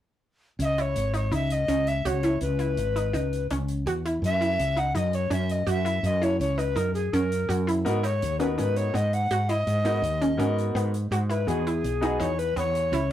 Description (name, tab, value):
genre	progressive instrumental, band music in an uneven meter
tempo	166 BPM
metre	5/4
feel	straight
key	C# dorian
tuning	A4 = 439 Hz
part	breathy bright alto recorder	melody	0.6-13.1 s	G#4 to F#5	-27 LUFS	left 2 dB	none
part	woody fretless electric bass	bass	0.6-13.1 s	G#1 to G#2	-27 LUFS	equal	none
part	hi-hat	drums	0.6-13.0 s	none	-44 LUFS	left 1 dB	none
part	analog pluck	arpeggios	0.8-13.0 s	B3 to F#4	-30 LUFS	right 1 dB	chorus
part	bright concert grand piano	accompaniment	7.8-12.3 s	B3 to A#4	-29 LUFS	equal	none
room	moderate small room ambience, RT60 0.5 s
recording	rough rehearsal-room recording, tube saturation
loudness	-23 LUFS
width	side -11 dB against mid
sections	0.6-13.1 A section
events	none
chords	0.6 C#m7; 4.2 F#7(no3); 7.9 G#m9; 11.5 Emaj9